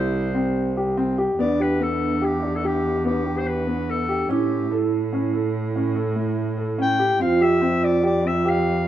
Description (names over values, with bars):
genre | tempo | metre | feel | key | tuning
contemporary instrumental, chamber music in an uneven meter | 144 BPM | 7/4 | straight | unclear | A4 = 439 Hz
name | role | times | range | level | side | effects
clear clarinet | melody | 0.0-8.9 s | G4 to G5 | -26 LUFS | left 3 dB | none
vibraphone with medium mallets | second line | 0.0-8.9 s | D4 to G4 | -25 LUFS | right 4 dB | none
dark grand piano | arpeggios | 0.0-8.8 s | A3 to A4 | -24 LUFS | left 2 dB | none
muted cello | bass | 0.0-8.9 s | C2 to A2 | -27 LUFS | right 2 dB | none
room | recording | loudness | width
little or no reverb | close, detailed microphones | -19 LUFS | side -12 dB against mid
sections
0.0-1.4 A section; 1.4-8.9 B section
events
none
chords
0.0 C; 1.4 Em7; 4.3 A7; 7.2 Fsus2